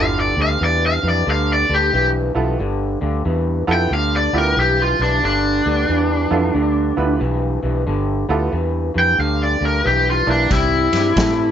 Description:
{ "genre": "electric blues shuffle", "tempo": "91 BPM", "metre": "4/4", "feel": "swing 64% on 8ths", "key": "G mixolydian", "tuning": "A4 = 440 Hz", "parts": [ { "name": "raw garage guitar", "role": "melody", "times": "0.0-11.5 s", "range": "D4 to G5", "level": "-17 LUFS", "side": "equal", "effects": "overdrive" }, { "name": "bright upright piano", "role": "accompaniment", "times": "0.0-10.5 s", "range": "Bb3 to B4", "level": "-22 LUFS", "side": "right 4 dB", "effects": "none" }, { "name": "electric guitar through a small old amp", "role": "riff", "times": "0.0-11.5 s", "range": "G2 to A3", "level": "-22 LUFS", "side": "left 1 dB", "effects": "none" }, { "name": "vintage muted fingered electric bass", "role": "bass", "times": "0.0-11.5 s", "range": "G1 to A2", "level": "-21 LUFS", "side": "equal", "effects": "none" }, { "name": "vintage drum kit", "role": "drums", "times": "10.5-11.4 s", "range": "kick drum, ride cymbal, snare drum", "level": "-22 LUFS", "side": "equal", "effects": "none" } ], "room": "light reverb", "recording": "nothing above 7.7 kHz", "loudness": "-15 LUFS", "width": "side -9 dB against mid", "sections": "0.0-11.5 A section", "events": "none", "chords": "0.0 G13; 10.5 C6" }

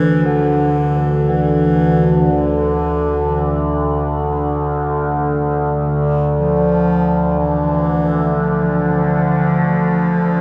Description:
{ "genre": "dark ambient drone", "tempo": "free time", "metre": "none", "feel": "none", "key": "unclear", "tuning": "A4 = 440 Hz", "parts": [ { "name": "mellow bass clarinet", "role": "melody", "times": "0.0-10.4 s", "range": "D3 to F3", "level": "-20 LUFS", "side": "equal", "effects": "diffuse ambient delay" }, { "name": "overtone-sweeping drone", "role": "drone", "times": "0.0-10.4 s", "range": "D2 to D3", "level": "-18 LUFS", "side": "equal", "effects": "chorus, built-in reverb" } ], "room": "wet huge ambient reverb, RT60 7.7 s", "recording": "none", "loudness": "-16 LUFS", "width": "mono", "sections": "0.0-10.4 A section", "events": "none", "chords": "none" }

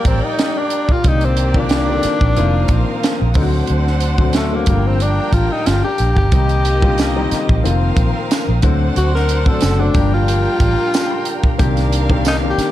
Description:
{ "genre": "lush 1970s-style soul", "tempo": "91 BPM", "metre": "4/4", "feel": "swing 54% on 16ths", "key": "C dorian", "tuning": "A4 = 440 Hz", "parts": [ { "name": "breathy tenor saxophone", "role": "melody", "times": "0.0-12.7 s", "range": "A3 to Bb4", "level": "-20 LUFS", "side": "left 2 dB", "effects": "none" }, { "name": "warm symphonic violin section", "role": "second line", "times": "0.0-12.7 s", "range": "Bb3 to G5", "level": "-25 LUFS", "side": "right 2 dB", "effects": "none" }, { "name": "warm baby grand piano", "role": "accompaniment", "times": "0.0-12.7 s", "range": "D3 to C6", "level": "-22 LUFS", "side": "left 4 dB", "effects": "none" }, { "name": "tonewheel organ", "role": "sustained chords", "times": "0.0-12.7 s", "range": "Bb3 to Eb6", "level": "-29 LUFS", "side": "right 2 dB", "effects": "stopped rotary speaker" }, { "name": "tight funk drum kit", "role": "drums", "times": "0.0-12.7 s", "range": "hi-hat, kick drum, snare drum", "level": "-18 LUFS", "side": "equal", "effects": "none" }, { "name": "vintage muted fingered electric bass", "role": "bass", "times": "0.1-12.6 s", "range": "F1 to D2", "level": "-17 LUFS", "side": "equal", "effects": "none" }, { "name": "tambourine", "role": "percussion", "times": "7.0-12.4 s", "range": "none", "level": "-32 LUFS", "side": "right 8 dB", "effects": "none" } ], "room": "small room reverb", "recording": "dark, warm production", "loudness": "-13 LUFS", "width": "side -13 dB against mid", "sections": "0.0-12.7 A section", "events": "tenor saxophone solo 0.0-12.7; grand piano fill 10.6-11.6", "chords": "0.0 Gm7; 1.0 Cm9; 2.4 F7sus4; 3.4 D7; 4.7 Gm7; 6.3 Cm9; 7.6 F7sus4; 8.6 D7; 9.9 Gm7; 11.6 Cm9" }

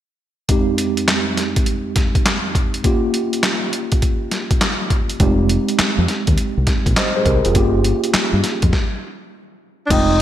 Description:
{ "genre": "R&B, new jack swing", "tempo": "102 BPM", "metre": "4/4", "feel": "swing 65% on 16ths", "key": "F minor", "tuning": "A4 = 439 Hz", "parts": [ { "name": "mellow tine electric piano", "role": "accompaniment", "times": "0.5-10.2 s", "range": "F2 to G5", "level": "-20 LUFS", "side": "right 1 dB", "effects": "medium stereo tremolo" }, { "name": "boom bap sampler-style drum kit", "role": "drums", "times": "0.5-10.1 s", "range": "crash cymbal, handclaps, hi-hat, kick drum, snare drum", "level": "-18 LUFS", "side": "equal", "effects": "gated reverb" }, { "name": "deep dub fingered electric bass", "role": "bass", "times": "5.2-10.2 s", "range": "F1 to G2", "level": "-18 LUFS", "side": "equal", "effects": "none" }, { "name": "raspy alto saxophone", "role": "melody", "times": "9.9-10.2 s", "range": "D4 to Eb4", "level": "-16 LUFS", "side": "right 1 dB", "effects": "none" } ], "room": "moderate lush hall reverb, RT60 2.3 s", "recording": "bright 1980s-style digital production", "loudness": "-15 LUFS", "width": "side -11 dB against mid", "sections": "0.5-9.9 A section", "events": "stop 8.7-9.9", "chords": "0.5 Fm7; 2.8 Gm7b5; 5.2 Fm7; 7.6 Gm7b5" }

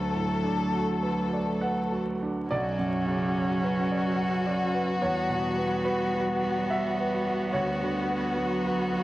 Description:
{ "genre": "neoclassical piano and strings", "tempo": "66-73 BPM", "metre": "3/4", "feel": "rubato", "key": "B minor", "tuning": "A4 = 440 Hz", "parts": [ { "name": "clear chamber violin section", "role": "melody", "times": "0.0-9.0 s", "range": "F#4 to A4", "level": "-31 LUFS", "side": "left 3 dB", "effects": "tape echo" }, { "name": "rich cello", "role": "second line", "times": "0.0-9.0 s", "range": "F#3 to G3", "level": "-30 LUFS", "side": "right 2 dB", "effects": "none" }, { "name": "clear concert grand piano", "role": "accompaniment", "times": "0.0-9.0 s", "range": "B1 to F#5", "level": "-30 LUFS", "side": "right 2 dB", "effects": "none" }, { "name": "clear viola", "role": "accompaniment", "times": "0.0-9.0 s", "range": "A3 to C#4", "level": "-34 LUFS", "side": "right 1 dB", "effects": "none" } ], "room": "wet studio reverb, RT60 0.6 s", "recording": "worn, warbling old tape, cassette tape, vinyl crackle, warbly pitch drift", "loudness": "-25 LUFS", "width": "side -16 dB against mid", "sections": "0.0-2.5 A section; 2.5-9.0 B section", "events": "none", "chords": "0.0 D6; 2.5 Bmadd9; 5.0 Emadd9; 7.5 Bmadd9/D" }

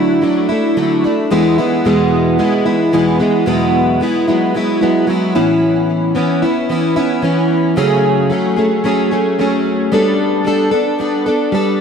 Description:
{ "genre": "rock", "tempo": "111 BPM", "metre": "4/4", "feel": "straight", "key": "E mixolydian, E major from 3.5 s", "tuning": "A4 = 440 Hz", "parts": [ { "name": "picked plugged-in steel-string acoustic guitar", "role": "solo", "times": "0.0-11.8 s", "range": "E2 to A4", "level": "-12 LUFS", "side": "equal", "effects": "analog chorus, ping-pong delay" } ], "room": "wet plate reverb, RT60 3.0 s", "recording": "dreamy mix soaked in reverb", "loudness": "-12 LUFS", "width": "side -6 dB against mid", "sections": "0.0-3.5 A section; 3.5-11.8 B section", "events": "none", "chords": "0.0 Dadd9; 1.3 E; 3.5 Eadd9; 5.3 Aadd9; 7.8 F#madd9; 9.9 Gadd9" }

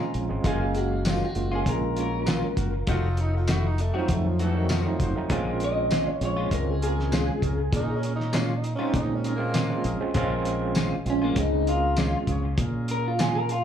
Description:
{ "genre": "straight-eighth soul blues", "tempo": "99 BPM", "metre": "4/4", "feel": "straight", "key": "Bb minor", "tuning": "A4 = 443 Hz", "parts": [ { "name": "electric guitar through a small old amp", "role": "melody", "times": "0.0-13.6 s", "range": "Bb3 to Bb5", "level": "-28 LUFS", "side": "left 1 dB", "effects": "spring reverb, slapback echo" }, { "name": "overdriven tine electric piano", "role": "accompaniment", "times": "0.0-12.4 s", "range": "Gb3 to F5", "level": "-30 LUFS", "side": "right 5 dB", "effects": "medium tremolo, slapback echo" }, { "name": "direct-recorded clean electric guitar", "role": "stabs", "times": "0.0-13.4 s", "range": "Bb2 to Gb4", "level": "-33 LUFS", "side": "left 4 dB", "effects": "ensemble chorus, slapback echo, analog delay" }, { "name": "fingered electric bass", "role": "bass", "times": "0.1-13.6 s", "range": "F1 to Bb2", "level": "-27 LUFS", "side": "equal", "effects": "none" }, { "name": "cloth-damped thuddy drum kit", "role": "drums", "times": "0.1-13.6 s", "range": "hi-hat, kick drum, snare drum, tambourine", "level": "-28 LUFS", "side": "equal", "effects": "none" }, { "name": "clear horn section", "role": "sustained chords", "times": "0.4-13.2 s", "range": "Gb3 to F5", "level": "-39 LUFS", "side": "left 2 dB", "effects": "none" }, { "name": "growling tenor saxophone", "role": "second line", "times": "2.9-10.0 s", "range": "Eb3 to F4", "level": "-32 LUFS", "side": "right 2 dB", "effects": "slapback echo" } ], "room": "small room ambience", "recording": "live gig heard through the venue's PA, club reverb", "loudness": "-23 LUFS", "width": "side -9 dB against mid", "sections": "0.0-10.2 A section; 10.2-13.6 B section", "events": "clean electric guitar solo 10.2-13.6", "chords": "0.5 Gbmaj7; 2.9 F7b9; 5.3 Bbm7" }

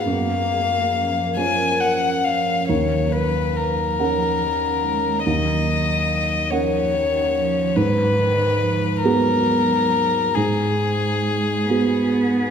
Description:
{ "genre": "neoclassical piano and strings", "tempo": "47 BPM (dotted quarters)", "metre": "6/8", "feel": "uneven beats, rubato", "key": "Eb minor", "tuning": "A4 = 440 Hz", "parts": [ { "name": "warm violin", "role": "melody", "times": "0.0-12.5 s", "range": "Ab4 to Ab5", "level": "-21 LUFS", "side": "left 4 dB", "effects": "none" }, { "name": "dark cello", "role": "second line", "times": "0.0-12.5 s", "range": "Eb3 to Cb4", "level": "-28 LUFS", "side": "right 4 dB", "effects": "none" }, { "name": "felt-muted upright piano", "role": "accompaniment", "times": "0.0-12.5 s", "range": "Eb2 to Gb5", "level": "-22 LUFS", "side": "right 2 dB", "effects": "none" }, { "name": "glassy FM pad", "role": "sustained chords", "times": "0.0-2.7 s", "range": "F3 to Bb4", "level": "-28 LUFS", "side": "right 1 dB", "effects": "ensemble chorus, built-in reverb, phaser" } ], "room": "wet recital hall reverb, RT60 1.9 s", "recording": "recorded in a church or concert hall", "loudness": "-18 LUFS", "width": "side -7 dB against mid", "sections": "0.0-2.7 A section; 2.7-12.5 B section", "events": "none", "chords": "0.0 Gbmaj7; 2.7 Ebm7; 7.8 Abm7" }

